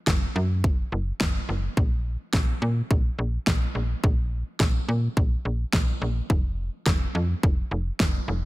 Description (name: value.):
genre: synth-pop.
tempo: 106 BPM.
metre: 4/4.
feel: straight.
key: unclear.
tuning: A4 = 440 Hz.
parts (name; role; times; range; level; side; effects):
slap-like FM bass; bass; 0.1-8.5 s; F1 to Bb2; -26 LUFS; equal; none.
pop drum kit; drums; 0.1-8.1 s; kick drum, snare drum; -24 LUFS; equal; none.
room: digital ambience.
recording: dense, heavily limited modern master.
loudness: -23 LUFS.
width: side -19 dB against mid.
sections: 0.0-8.5 A section.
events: none.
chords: none.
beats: 0.07 0.64 1.21 | 1.77 2.34 2.90 3.47 | 4.04 4.60 5.17 5.74 | 6.30 6.87 7.43 8.00.